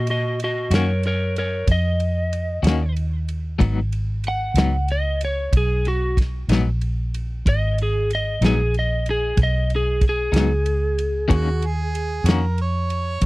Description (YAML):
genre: slow blues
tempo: 62 BPM (dotted quarters)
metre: 12/8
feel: straight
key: unclear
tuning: A4 = 441 Hz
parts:
  - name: lightly driven lead guitar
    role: melody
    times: 0.0-11.9 s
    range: Gb4 to Gb5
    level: -24 LUFS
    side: equal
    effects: none
  - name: vintage muted fingered electric bass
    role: bass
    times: 0.0-13.3 s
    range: Ab1 to Bb2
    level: -21 LUFS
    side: equal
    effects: none
  - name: warm soul drum kit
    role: drums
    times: 0.1-13.3 s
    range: kick drum, ride cymbal, snare drum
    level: -19 LUFS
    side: equal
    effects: none
  - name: electric guitar at the edge of break-up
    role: accompaniment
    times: 0.7-12.5 s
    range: Ab2 to Gb4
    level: -23 LUFS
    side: left 5 dB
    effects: tremolo
  - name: warm harmonica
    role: second line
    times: 11.3-13.3 s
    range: Gb4 to Db5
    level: -28 LUFS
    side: right 4 dB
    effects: overdrive
room: little or no reverb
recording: dry, close 1970s-style studio recording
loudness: -19 LUFS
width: side -20 dB against mid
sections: 0.0-13.3 A section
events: none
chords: 0.0 Ebm7; 3.6 Abm7; 11.3 Ebm7